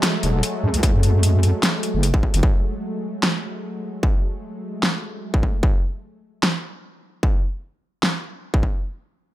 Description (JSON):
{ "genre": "heavy wobble dubstep", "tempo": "150 BPM", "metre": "4/4", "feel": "swing 54% on 16ths, half-time", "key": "F# minor", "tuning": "A4 = 439 Hz", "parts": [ { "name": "lush unison pad", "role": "sustained chords", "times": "0.0-5.6 s", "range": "F#3 to A3", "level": "-28 LUFS", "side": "equal", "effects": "chorus, sidechain pumping" }, { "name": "dubstep drum kit", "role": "drums", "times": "0.0-8.1 s", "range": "hi-hat, snare drum", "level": "-21 LUFS", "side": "equal", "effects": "studio reverb" }, { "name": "wobble bass", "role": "bass", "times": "0.2-2.4 s", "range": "E1 to F#2", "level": "-17 LUFS", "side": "equal", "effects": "chorus, overdrive" }, { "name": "electronic kick drum", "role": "drums", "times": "0.8-8.7 s", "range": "none", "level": "-18 LUFS", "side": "equal", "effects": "distortion, studio reverb" } ], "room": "little or no reverb", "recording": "none", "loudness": "-19 LUFS", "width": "side -15 dB against mid", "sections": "0.0-8.8 A section", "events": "filter sweep on wobble bass 0.0-2.4", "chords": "0.0 F#madd9", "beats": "0.03 0.43 | 0.83 1.23 1.63 2.03 | 2.43 2.83 3.23 3.63 | 4.03 4.43 4.83 5.23 | 5.63 6.03 6.43 6.83 | 7.23 7.63 8.03 8.43" }